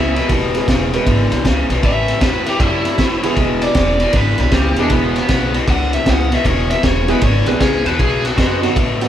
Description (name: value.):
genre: electric blues shuffle.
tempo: 156 BPM.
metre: 4/4.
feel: swing 65% on 8ths.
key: E major.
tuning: A4 = 440 Hz.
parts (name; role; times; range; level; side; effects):
overdriven electric guitar; melody; 0.0-8.6 s; B3 to F#5; -20 LUFS; equal; none.
warm upright piano; accompaniment; 0.0-9.1 s; D#3 to B4; -21 LUFS; right 4 dB; none.
overdriven electric guitar; riff; 0.0-9.1 s; E2 to A3; -19 LUFS; left 3 dB; none.
upright bass; bass; 0.0-9.0 s; E1 to A2; -20 LUFS; equal; none.
crunchy breakbeat drum kit; drums; 0.2-9.1 s; kick drum, ride cymbal, snare drum; -18 LUFS; equal; none.
room: moderate small room reverb, RT60 0.5 s.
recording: band playing live in one room.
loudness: -13 LUFS.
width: side -10 dB against mid.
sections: 0.0-9.1 A section.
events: overdriven electric guitar solo 0.0-9.1.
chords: 0.0 E; 1.8 A5; 3.4 E; 8.0 B.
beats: | 0.29 0.68 1.06 1.45 | 1.83 2.22 2.60 2.99 | 3.38 3.76 4.14 4.53 | 4.92 5.30 5.68 6.07 | 6.46 6.84 7.22 7.61 | 8.00 8.38 8.76.